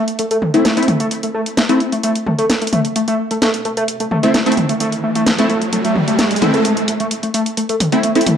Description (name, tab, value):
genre	driving peak-time techno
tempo	130 BPM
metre	4/4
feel	straight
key	A minor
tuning	A4 = 445 Hz
part	overdriven synth lead	riff	0.0-8.3 s	A3 to B3	-18 LUFS	equal	distortion, analog chorus, tape echo
part	techno drum kit	drums	0.1-8.4 s	hi-hat, snare drum, toms	-18 LUFS	equal	none
part	rave stab	stabs	0.5-8.3 s	A3 to E4	-17 LUFS	equal	chorus, built-in reverb, tape echo
part	riser	sound effects	4.3-6.6 s	none	-22 LUFS	right 2 dB	none
room	wet stone room reverb, RT60 1.0 s, digital ambience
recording	dry, gritty hardware recording, cassette tape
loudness	-14 LUFS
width	side -8 dB against mid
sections	0.0-6.7 A section; 6.7-8.4 B section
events	filter sweep on analog synth lead 0.0-6.7; riser 4.3-6.7; build-up 6.7-8.4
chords	0.0 Am